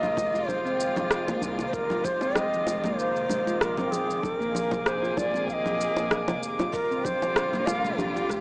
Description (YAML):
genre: organic downtempo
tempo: 96 BPM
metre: 4/4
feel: swing 55% on 16ths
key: F dorian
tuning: A4 = 440 Hz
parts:
  - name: mellow Native American-style cedar flute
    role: melody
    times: 0.0-8.4 s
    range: G4 to F5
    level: -28 LUFS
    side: equal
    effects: analog delay
  - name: dark chamber string section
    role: sustained chords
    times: 0.0-8.4 s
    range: D3 to Ab4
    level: -33 LUFS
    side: equal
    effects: sidechain pumping
  - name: handpan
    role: arpeggios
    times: 0.0-8.4 s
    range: C3 to F4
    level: -33 LUFS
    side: equal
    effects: none
  - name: round analog bass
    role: bass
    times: 0.0-8.4 s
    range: Eb1 to C2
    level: -41 LUFS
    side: equal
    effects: tube saturation, sidechain pumping
  - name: electronic congas, shaker and rim click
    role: drums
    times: 0.0-8.4 s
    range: none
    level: -30 LUFS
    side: equal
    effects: overdrive
  - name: drifting glass-harmonics texture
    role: texture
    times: 0.1-8.4 s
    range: D6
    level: -36 LUFS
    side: right 1 dB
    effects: chorus, built-in reverb
  - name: electronic kick drum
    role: drums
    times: 0.2-8.4 s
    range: none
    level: -37 LUFS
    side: equal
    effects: overdrive
  - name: bongos and congas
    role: percussion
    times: 0.2-8.4 s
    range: none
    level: -32 LUFS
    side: equal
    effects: none
room: light reverb, studio reverb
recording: dry, gritty hardware recording, small speaker sound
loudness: -24 LUFS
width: side -31 dB against mid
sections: 0.0-8.4 A section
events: none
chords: 0.0 Fm7; 4.2 Bb7sus4; 6.7 Ebmaj9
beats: 0.48 1.11 | 1.73 2.36 2.98 3.61 | 4.23 4.86 5.48 6.11 | 6.73 7.36 7.98